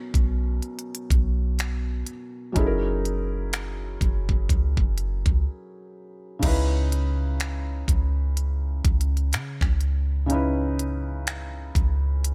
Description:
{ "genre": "contemporary R&B", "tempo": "62 BPM", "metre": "4/4", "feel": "swing 58% on 16ths", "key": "unclear", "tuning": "A4 = 441 Hz", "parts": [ { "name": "felt-muted upright piano", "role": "accompaniment", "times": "0.0-12.3 s", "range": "B2 to B4", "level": "-34 LUFS", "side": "equal", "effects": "none" }, { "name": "soft 808-style bass", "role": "bass", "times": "0.1-12.3 s", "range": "F#1 to C#3", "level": "-27 LUFS", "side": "equal", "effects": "none" }, { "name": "trap drum kit", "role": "drums", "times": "0.1-12.3 s", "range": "crash cymbal, finger snaps, hi-hat, kick drum", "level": "-27 LUFS", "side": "equal", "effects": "none" } ], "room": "little or no reverb", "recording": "none", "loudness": "-25 LUFS", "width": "mono", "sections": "0.0-6.4 A section; 6.4-12.3 B section", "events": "break 5.5-6.4", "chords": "0.0 Bmaj7; 2.6 F#13; 6.4 C#m9" }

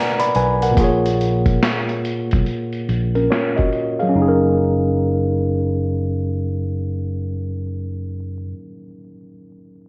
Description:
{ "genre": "lo-fi hip hop", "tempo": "71 BPM", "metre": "4/4", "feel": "swing 63% on 16ths", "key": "F# major", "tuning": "A4 = 442 Hz", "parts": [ { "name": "tine electric piano", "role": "accompaniment", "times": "0.0-9.9 s", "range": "A#2 to B5", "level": "-22 LUFS", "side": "equal", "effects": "overdrive, low-pass filter" }, { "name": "boom bap sampler-style drum kit", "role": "drums", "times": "0.2-4.1 s", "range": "hi-hat, kick drum, snare drum", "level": "-23 LUFS", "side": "equal", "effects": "none" }, { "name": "fingered electric bass", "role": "bass", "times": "0.4-8.5 s", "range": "F#1 to B1", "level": "-24 LUFS", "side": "equal", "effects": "none" } ], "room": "light reverb", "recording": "vinyl crackle, low-pass filter", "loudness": "-19 LUFS", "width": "mono", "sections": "0.0-4.1 A section; 4.1-7.5 B section", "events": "none", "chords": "0.0 Bmadd9; 0.8 A#m7; 4.1 F#6" }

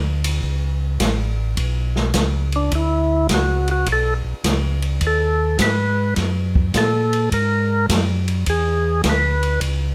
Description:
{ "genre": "soul jazz organ trio", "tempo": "104 BPM", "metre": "4/4", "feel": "swing 67% on 8ths", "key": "unclear", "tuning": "A4 = 436 Hz", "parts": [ { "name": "mellow tonewheel organ", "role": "bass", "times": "0.0-9.9 s", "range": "A1 to A#2", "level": "-22 LUFS", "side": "equal", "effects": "slow rotary speaker" }, { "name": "open jazz drum kit", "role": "drums", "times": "0.2-9.8 s", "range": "hi-hat, kick drum, ride cymbal, snare drum", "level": "-25 LUFS", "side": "equal", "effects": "none" }, { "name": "percussive tonewheel organ", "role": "melody", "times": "2.6-9.6 s", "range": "D4 to B4", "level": "-22 LUFS", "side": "equal", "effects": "slow rotary speaker" } ], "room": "little or no reverb", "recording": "none", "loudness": "-19 LUFS", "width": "mono", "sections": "0.0-9.9 A section", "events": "tonewheel organ solo 0.0-9.9", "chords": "0.0 E7sus2; 3.9 B13; 6.2 F#add9; 8.5 E6" }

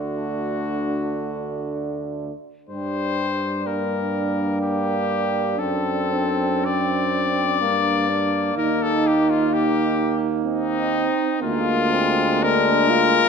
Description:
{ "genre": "classical, hymn-like piece for brass band", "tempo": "62 BPM", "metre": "3/4", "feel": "uneven beats, rubato", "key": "G minor", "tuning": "A4 = 440 Hz", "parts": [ { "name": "clear cornet", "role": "melody", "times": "0.0-13.3 s", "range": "Eb4 to D5", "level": "-23 LUFS", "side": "left 7 dB", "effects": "none" }, { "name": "dark French horn section", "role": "second line", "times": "0.0-13.3 s", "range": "Bb3 to Eb4", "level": "-27 LUFS", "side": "right 6 dB", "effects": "none" }, { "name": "brilliant trombone", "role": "accompaniment", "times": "0.0-13.3 s", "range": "D3 to C4", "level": "-28 LUFS", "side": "right 6 dB", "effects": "none" }, { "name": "clear euphonium", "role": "accompaniment", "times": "0.0-13.3 s", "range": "G3 to F4", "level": "-26 LUFS", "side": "left 1 dB", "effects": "none" }, { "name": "warm tuba", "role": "bass", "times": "0.0-13.3 s", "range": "D2 to G2", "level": "-27 LUFS", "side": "equal", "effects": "none" } ], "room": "moderate recital hall reverb, RT60 1.4 s", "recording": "none", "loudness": "-19 LUFS", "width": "side -6 dB against mid", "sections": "0.0-2.7 A section; 2.7-13.3 B section", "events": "none", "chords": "0.0 D; 2.7 Gm; 5.6 D7/F#; 7.6 Gm; 8.6 Eb5; 11.4 Bb7/D" }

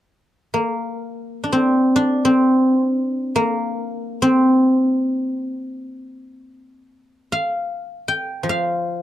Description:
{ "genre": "chinese traditional, Chinese solo plucked strings", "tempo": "free time", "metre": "none", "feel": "none", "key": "C shang mode", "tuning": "A4 = 439 Hz", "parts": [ { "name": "guzheng", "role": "solo", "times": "0.5-9.0 s", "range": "F3 to G5", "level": "-17 LUFS", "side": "equal", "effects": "none" } ], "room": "light reverb", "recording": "dry, close 1970s-style studio recording", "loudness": "-17 LUFS", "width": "side -13 dB against mid", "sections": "0.0-6.9 A section; 6.9-9.0 B section", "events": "none", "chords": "none" }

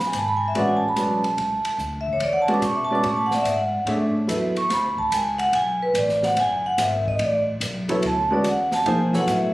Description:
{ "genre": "modal jazz", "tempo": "144 BPM", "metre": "4/4", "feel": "swing 66% on 8ths", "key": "E mixolydian", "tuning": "A4 = 437 Hz", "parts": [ { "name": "vibraphone with medium mallets", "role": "melody", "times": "0.0-9.5 s", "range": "B4 to D6", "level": "-21 LUFS", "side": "right 1 dB", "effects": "none" }, { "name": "upright bass", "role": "bass", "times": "0.0-9.5 s", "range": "F#1 to B2", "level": "-30 LUFS", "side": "equal", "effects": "none" }, { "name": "open jazz drum kit", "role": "drums", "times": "0.1-9.4 s", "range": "hi-hat, kick drum, ride cymbal, snare drum", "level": "-32 LUFS", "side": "left 1 dB", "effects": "none" }, { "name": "warm concert grand piano", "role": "accompaniment", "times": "0.5-4.5, 7.9-9.5 s", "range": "F3 to E5", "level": "-22 LUFS", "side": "equal", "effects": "none" } ], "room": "light reverb", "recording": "recorded on a phone in the room, club reverb, compression", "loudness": "-20 LUFS", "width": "side -17 dB against mid", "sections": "0.0-9.5 A section", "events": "vibraphone solo 0.0-9.5", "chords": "0.0 E9sus4" }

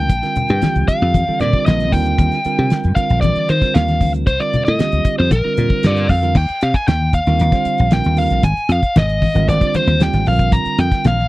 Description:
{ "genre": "electric jazz fusion", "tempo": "115 BPM", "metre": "4/4", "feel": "straight", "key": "Bb major, Eb major from 6.4 s", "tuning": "A4 = 441 Hz", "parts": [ { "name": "biting lead guitar", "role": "melody", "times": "0.0-11.3 s", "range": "Bb4 to Bb5", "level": "-19 LUFS", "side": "left 1 dB", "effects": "overdrive" }, { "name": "bell-like tine electric piano", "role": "accompaniment", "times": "0.0-11.2 s", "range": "D3 to C5", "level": "-22 LUFS", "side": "right 6 dB", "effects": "none" }, { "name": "dry thumbed slap bass", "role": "bass", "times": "0.0-11.3 s", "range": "Ab1 to Eb3", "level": "-16 LUFS", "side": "equal", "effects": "none" }, { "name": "damped 70s drum kit", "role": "drums", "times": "0.1-11.2 s", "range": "crash cymbal, hi-hat, kick drum, snare drum", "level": "-17 LUFS", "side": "equal", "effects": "none" }, { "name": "congas", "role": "percussion", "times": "0.1-11.2 s", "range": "none", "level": "-23 LUFS", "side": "left 4 dB", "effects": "none" } ], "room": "little or no reverb", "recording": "dry, close 1970s-style studio recording", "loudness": "-13 LUFS", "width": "side -18 dB against mid", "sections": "0.0-6.4 A section; 6.4-11.3 B section", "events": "none", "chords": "0.0 Bbadd9; 1.9 Eb69; 4.3 Cm9; 5.3 Bbadd9; 6.4 Ebmaj9; 8.4 Abmaj9; 10.3 Gm7/Bb" }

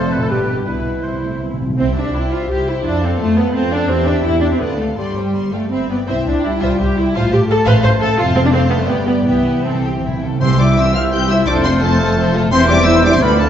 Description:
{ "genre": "quick classical-period movement for symphony orchestra", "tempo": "154-176 BPM", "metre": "3/4", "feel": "rubato", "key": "C major", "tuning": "A4 = 440 Hz", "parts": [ { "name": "warm studio violin section", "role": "melody", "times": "0.0-13.5 s", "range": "E4 to G6", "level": "-25 LUFS", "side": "left 2 dB", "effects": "none" }, { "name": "warm oboe", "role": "second line", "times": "0.0-1.4, 10.4-13.5 s", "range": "A4 to D5", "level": "-24 LUFS", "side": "equal", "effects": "none" }, { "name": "warm studio violin section", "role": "second line", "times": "0.0-13.5 s", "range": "D4 to F5", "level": "-25 LUFS", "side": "left 1 dB", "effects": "none" }, { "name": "rich studio viola section", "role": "accompaniment", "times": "0.0-13.5 s", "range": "D3 to C5", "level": "-19 LUFS", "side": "right 1 dB", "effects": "none" }, { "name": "mellow French horn section", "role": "sustained chords", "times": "0.0-13.5 s", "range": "E3 to C5", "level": "-21 LUFS", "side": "left 3 dB", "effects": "none" }, { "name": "warm studio cello section", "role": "bass", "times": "0.0-13.5 s", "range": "C2 to C5", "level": "-22 LUFS", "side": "right 2 dB", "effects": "none" }, { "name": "warm studio double bass section", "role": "bass", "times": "0.0-13.5 s", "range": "E1 to F2", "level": "-20 LUFS", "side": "right 1 dB", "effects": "none" }, { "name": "timpani", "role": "percussion", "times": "0.7-2.3, 9.3-10.9 s", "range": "C3", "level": "-21 LUFS", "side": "right 2 dB", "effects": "none" }, { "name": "bright clarinet", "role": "second line", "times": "10.4-13.5 s", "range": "A4 to G5", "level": "-22 LUFS", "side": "left 1 dB", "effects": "none" }, { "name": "mellow concert flute", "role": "second line", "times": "10.4-13.5 s", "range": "E6 to G6", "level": "-24 LUFS", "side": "left 2 dB", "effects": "none" } ], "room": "wet recital hall reverb, RT60 1.4 s", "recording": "heard from further back in the room, nothing above 7.6 kHz", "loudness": "-13 LUFS", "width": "side -9 dB against mid", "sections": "0.0-1.8 A section; 1.8-10.4 B section; 10.4-13.5 B section", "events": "timpani fill 0.7-1.8, 9.3-10.4", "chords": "0.3 G; 0.7 C; 2.9 F; 3.9 C/E; 4.6 Dm; 5.0 Gsus4; 5.7 G; 6.1 C; 7.1 F/A; 8.2 F; 8.9 G; 9.3 C; 11.5 F; 12.5 C/E" }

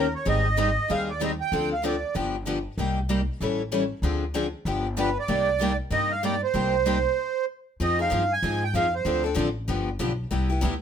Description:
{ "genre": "acoustic string swing (jazz manouche)", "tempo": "191 BPM", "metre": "4/4", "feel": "swing 60% on 8ths", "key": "C minor", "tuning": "A4 = 438 Hz", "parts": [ { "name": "accordion", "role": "melody", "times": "0.0-2.1, 5.0-9.2 s", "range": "Bb4 to Ab5", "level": "-25 LUFS", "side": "right 4 dB", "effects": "light tremolo tuning" }, { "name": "picked steel-string acoustic guitar", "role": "accompaniment", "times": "0.0-10.7 s", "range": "C3 to A4", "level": "-28 LUFS", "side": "left 5 dB", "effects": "none" }, { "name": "picked steel-string acoustic guitar", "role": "accompaniment", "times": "0.0-10.7 s", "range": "C3 to A4", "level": "-33 LUFS", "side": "right 7 dB", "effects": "none" }, { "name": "upright bass", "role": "bass", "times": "0.0-10.8 s", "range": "G1 to Ab2", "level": "-29 LUFS", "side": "equal", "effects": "none" } ], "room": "light reverb", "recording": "minimal, uncompressed stereo recording", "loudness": "-23 LUFS", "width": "side -8 dB against mid", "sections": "0.0-7.8 A section; 7.8-10.8 B section", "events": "stop 7.2-7.8", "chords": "0.3 Abmaj7; 1.5 Dm7; 2.1 G7; 2.8 Cm7; 3.4 A7; 4.0 Dm7b5; 4.7 G7; 5.3 Cm7; 7.8 Fm7; 9.1 Dm7; 9.7 G7; 10.3 Cmaj7" }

